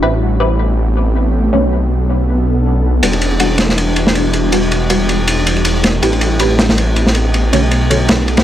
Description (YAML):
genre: drum and bass, jungle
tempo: 160 BPM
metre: 4/4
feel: swing 54% on 16ths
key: E minor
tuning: A4 = 440 Hz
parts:
  - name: ethereal airy pad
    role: sustained chords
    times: 0.0-8.4 s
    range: G3 to A4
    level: -19 LUFS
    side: left 1 dB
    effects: ensemble chorus, built-in reverb
  - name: filtered dub chord stab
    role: stabs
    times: 0.0-8.1 s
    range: D3 to B4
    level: -19 LUFS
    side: equal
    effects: phaser, lush chorus, dub echo
  - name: detuned saw bass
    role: bass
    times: 0.0-8.4 s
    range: E1 to B1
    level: -15 LUFS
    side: equal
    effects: none
  - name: crunchy breakbeat drum kit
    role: drums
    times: 3.0-8.4 s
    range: ride cymbal, snare drum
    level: -15 LUFS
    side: equal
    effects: none
room: light reverb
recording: dry, gritty hardware recording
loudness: -11 LUFS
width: side -11 dB against mid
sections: 0.0-8.4 A section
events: none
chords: 0.0 Am9; 1.5 Bm9; 3.0 Em9; 6.0 Am9; 7.5 Bm9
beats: | 0.03 0.40 0.78 1.15 | 1.53 1.90 2.28 2.65 | 3.03 3.40 3.78 4.15 | 4.53 4.90 5.28 5.65 | 6.03 6.40 6.78 7.15 | 7.53 7.90 8.28